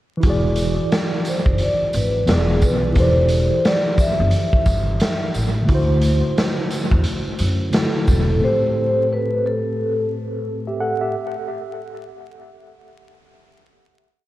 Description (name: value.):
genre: lo-fi hip hop.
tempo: 88 BPM.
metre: 4/4.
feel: swing 62% on 16ths.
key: A dorian.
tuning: A4 = 440 Hz.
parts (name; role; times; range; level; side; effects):
mellow tine electric piano; accompaniment; 0.2-11.3 s; A2 to F#5; -23 LUFS; right 1 dB; medium stereo tremolo, low-pass filter, analog delay.
upright bass; bass; 0.2-8.4 s; E1 to F#2; -20 LUFS; equal; none.
raw garage drum kit; drums; 0.2-8.3 s; hi-hat, kick drum, snare drum; -20 LUFS; equal; analog delay.
tambourine; percussion; 0.6-8.3 s; none; -40 LUFS; right 3 dB; analog delay.
vibraphone with soft mallets; melody; 1.3-10.1 s; G#4 to E5; -22 LUFS; left 1 dB; low-pass filter, analog delay.
room: light reverb, small room ambience.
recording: echo-heavy mix, vinyl crackle.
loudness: -16 LUFS.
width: side -15 dB against mid.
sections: 0.2-11.1 A section.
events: none.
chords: 0.2 E7; 2.3 E7b9; 3.0 Am7/E; 5.7 D9; 8.4 Am7.